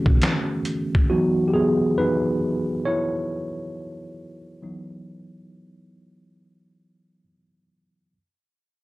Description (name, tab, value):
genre	lo-fi hip hop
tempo	68 BPM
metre	4/4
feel	swing 65% on 16ths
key	C# minor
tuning	A4 = 440 Hz
part	mellow tine electric piano	accompaniment	0.0-8.2 s	D3 to C#5	-22 LUFS	equal	medium stereo tremolo, low-pass filter
part	trip hop sampler-style drum kit	drums	0.1-1.1 s	finger snaps, hi-hat, kick drum, snare drum	-20 LUFS	equal	none
room	moderate studio reverb, RT60 0.6 s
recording	dry, gritty hardware recording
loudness	-20 LUFS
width	side -19 dB against mid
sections	0.0-8.2 A section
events	fade-out 0.0-8.2; tine electric piano solo 0.0-8.2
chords	0.0 Bm11; 1.1 C#m11